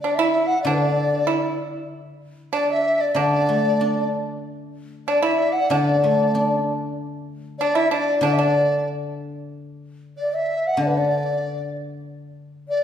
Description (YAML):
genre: chinese traditional, Chinese chamber ensemble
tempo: 95 BPM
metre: 2/4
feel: rubato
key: unclear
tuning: A4 = 436 Hz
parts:
  - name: mellow hollow large dizi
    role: melody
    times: 0.0-12.8 s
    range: B4 to F#5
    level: -24 LUFS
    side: equal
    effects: none
  - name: breathy low xiao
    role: second line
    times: 0.0-12.8 s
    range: B4 to F#5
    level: -24 LUFS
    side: left 2 dB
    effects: none
  - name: pipa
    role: second line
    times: 0.0-8.8 s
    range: D4 to E4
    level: -24 LUFS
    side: right 4 dB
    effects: none
  - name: guzheng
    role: accompaniment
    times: 0.0-12.7 s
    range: D3 to D4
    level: -25 LUFS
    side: left 1 dB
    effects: none
room: wet recital hall reverb, RT60 1.7 s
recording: heard from further back in the room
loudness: -19 LUFS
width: side -9 dB against mid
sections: 0.0-9.5 A section; 9.5-12.8 A section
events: none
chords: none